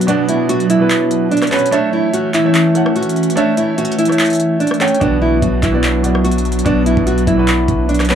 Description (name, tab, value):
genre	hip hop, trap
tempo	146 BPM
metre	4/4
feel	half-time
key	B minor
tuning	A4 = 440 Hz
part	nylon-string guitar	melody	0.0-8.2 s	C#4 to F#4	-16 LUFS	equal	none
part	clear concert grand piano	accompaniment	0.0-8.2 s	B2 to G5	-19 LUFS	right 4 dB	none
part	hollow soft pad	sustained chords	0.0-8.2 s	E3 to D4	-18 LUFS	left 1 dB	ensemble chorus
part	trap drum kit	drums	0.0-8.2 s	handclaps, hi-hat, kick drum, rim click	-20 LUFS	equal	none
part	long sustained 808-style bass	bass	5.0-8.2 s	B1	-18 LUFS	equal	none
room	wet booth ambience, RT60 0.2 s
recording	none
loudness	-12 LUFS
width	side -8 dB against mid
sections	0.0-8.2 A section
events	break 0.0-5.0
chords	0.0 Bm; 1.7 A; 5.0 Bm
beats	| 0.08 0.49 0.90 1.31 | 1.73 2.14 2.55 2.96 | 3.37 3.78 4.19 4.60 | 5.01 5.42 5.83 6.25 | 6.66 7.07 7.48 7.89